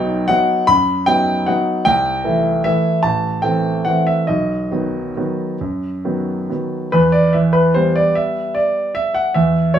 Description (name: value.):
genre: classical, piano waltz.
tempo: 129-162 BPM.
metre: 3/4.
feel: rubato.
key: E minor.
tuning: A4 = 442 Hz.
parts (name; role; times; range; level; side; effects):
clear baby grand piano; solo; 0.0-9.8 s; A1 to B5; -15 LUFS; equal; none.
room: light reverb.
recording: studio ambience.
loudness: -15 LUFS.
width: side -9 dB against mid.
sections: 0.0-6.9 A section; 6.9-9.8 B section.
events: none.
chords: 0.0 B; 1.9 C6; 3.0 Am; 4.3 B; 6.9 Em.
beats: 0.29 | 0.69 1.07 1.48 | 1.86 2.25 2.65 | 3.04 3.43 3.86 | 4.29 4.72 5.17 | 5.61 6.04 6.49 | 6.93 7.33 7.75 | 8.15 8.55 8.95 | 9.34 9.74.